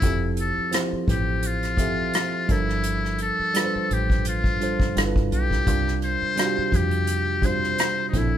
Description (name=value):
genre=R&B, neo-soul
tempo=85 BPM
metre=4/4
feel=swing 54% on 16ths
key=unclear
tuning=A4 = 440 Hz
part: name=trumpet with metal mute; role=melody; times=0.0-8.4 s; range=Eb4 to C5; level=-26 LUFS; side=left 4 dB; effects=none
part: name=tine electric piano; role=accompaniment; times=0.0-8.4 s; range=Bb2 to E5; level=-27 LUFS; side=right 3 dB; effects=none
part: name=deep dub fingered electric bass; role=bass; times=0.0-8.4 s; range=F1 to F2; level=-26 LUFS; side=equal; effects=none
part: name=unplugged drum kit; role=drums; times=0.0-8.3 s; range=hi-hat, kick drum, rim click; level=-25 LUFS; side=equal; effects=none
room=light reverb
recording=band playing live in one room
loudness=-21 LUFS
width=side -10 dB against mid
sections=0.0-8.4 A section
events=none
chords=0.0 Fmaj7; 2.5 Gm9; 5.0 G13; 5.7 C7sus4